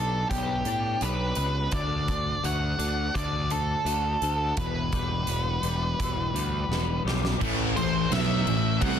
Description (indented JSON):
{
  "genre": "quiet-loud alternative rock",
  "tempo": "84 BPM",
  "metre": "4/4",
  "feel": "straight",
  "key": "A dorian",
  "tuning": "A4 = 440 Hz",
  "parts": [
    { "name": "octave-fuzz lead guitar", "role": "melody", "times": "0.0-9.0 s", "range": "G4 to F#5", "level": "-29 LUFS", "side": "right 1 dB", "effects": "distortion, slapback echo" },
    { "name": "twelve-string electric guitar", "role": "arpeggios", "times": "0.0-7.4 s", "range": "E2 to B4", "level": "-35 LUFS", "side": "left 13 dB", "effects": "ensemble chorus" },
    { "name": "fuzz picked electric bass", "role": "bass", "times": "0.0-9.0 s", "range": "E1 to A2", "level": "-29 LUFS", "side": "equal", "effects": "overdrive" },
    { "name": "huge arena drum kit", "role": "drums", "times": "0.3-9.0 s", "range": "crash cymbal, hi-hat, kick drum, snare drum", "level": "-32 LUFS", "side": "right 1 dB", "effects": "none" },
    { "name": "string machine, violins", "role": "sustained chords", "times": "7.4-9.0 s", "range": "E3 to E5", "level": "-36 LUFS", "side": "equal", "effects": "ensemble chorus" },
    { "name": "fuzz guitar", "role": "riff", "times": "7.4-9.0 s", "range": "A2 to C4", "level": "-29 LUFS", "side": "left 12 dB", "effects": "distortion" },
    { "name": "overdriven semi-hollow guitar", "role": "riff", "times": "7.4-9.0 s", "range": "A2 to C4", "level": "-30 LUFS", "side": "right 12 dB", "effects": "none" }
  ],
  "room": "small room ambience",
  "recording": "dense, heavily limited modern master",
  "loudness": "-24 LUFS",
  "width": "side -8 dB against mid",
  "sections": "0.0-7.4 A section; 7.4-9.0 B section",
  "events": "drum fill 6.7-7.4",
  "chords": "0.0 G/B; 1.7 D; 4.6 Em; 7.4 Am"
}